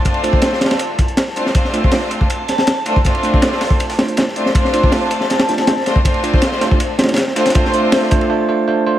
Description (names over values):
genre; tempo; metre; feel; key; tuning
drum and bass, jungle; 160 BPM; 4/4; straight; D minor; A4 = 442 Hz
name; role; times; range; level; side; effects
bright studio string section; sustained chords; 0.0-8.3 s; A3 to C5; -20 LUFS; left 2 dB; vintage 12-bit sampler grit
saturated sub bass; bass; 0.0-8.0 s; D1 to C2; -39 LUFS; equal; none
dusty soul sampler-style drum kit; drums; 0.0-8.2 s; hi-hat, snare drum; -29 LUFS; left 1 dB; overdrive, high-pass filter on hats, high-pass filter on snare
backwards swelling texture; texture; 0.0-8.3 s; A5; -25 LUFS; left 1 dB; built-in reverb
crunchy breakbeat drum kit; drums; 0.1-8.3 s; kick drum, ride cymbal, snare drum; -15 LUFS; equal; none
bell-like tine electric piano; stabs; 0.2-9.0 s; A3 to C5; -20 LUFS; right 3 dB; vintage 12-bit sampler grit, dub echo
room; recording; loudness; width
light reverb; none; -13 LUFS; side -12 dB against mid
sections
0.0-9.0 A section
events
build-up 0.0-9.0; break 8.3-9.0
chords
0.0 Dm7